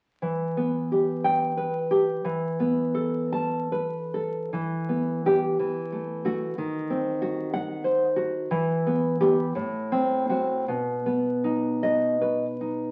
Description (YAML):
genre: romantic piece for solo classical guitar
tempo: 46-65 BPM (dotted quarters)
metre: 6/8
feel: rubato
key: E minor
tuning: A4 = 439 Hz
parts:
  - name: nylon-string guitar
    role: solo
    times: 0.2-12.9 s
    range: A2 to A5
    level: -26 LUFS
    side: equal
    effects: none
room: wet studio reverb, RT60 0.8 s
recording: very old 78 rpm record, vinyl crackle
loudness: -26 LUFS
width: mono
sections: 0.2-4.5 A section; 4.5-12.9 B section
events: none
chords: 0.2 Em; 2.3 Esus4; 4.5 Em; 5.6 Esus24; 6.6 D#m6; 8.5 Em; 9.5 F#dim/A; 10.7 B